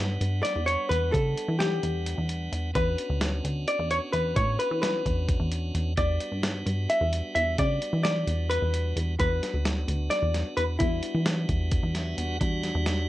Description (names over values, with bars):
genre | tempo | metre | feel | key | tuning
progressive instrumental, band music in an uneven meter | 261 BPM (eighths) | 7/8 | straight | E dorian | A4 = 441 Hz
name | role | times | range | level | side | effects
vintage hollow-body jazz guitar | melody | 0.0-11.9 s | E4 to E5 | -28 LUFS | left 1 dB | none
tonewheel organ | accompaniment | 0.0-13.1 s | G3 to F#5 | -36 LUFS | right 1 dB | overdrive, stopped rotary speaker
plucky analog bass | bass | 0.0-13.1 s | D2 to E3 | -28 LUFS | equal | none
dusty soul sampler-style drum kit | drums | 0.2-13.0 s | hi-hat, kick drum, snare drum | -30 LUFS | equal | none
room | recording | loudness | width
light reverb | worn, warbling old tape, cassette tape, warbly pitch drift | -24 LUFS | side -15 dB against mid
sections
0.0-12.4 A section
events
tonewheel organ fill 11.7-12.4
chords
0.0 Em7; 2.8 Bmadd9; 6.0 Em7; 9.2 Bm; 10.8 Em7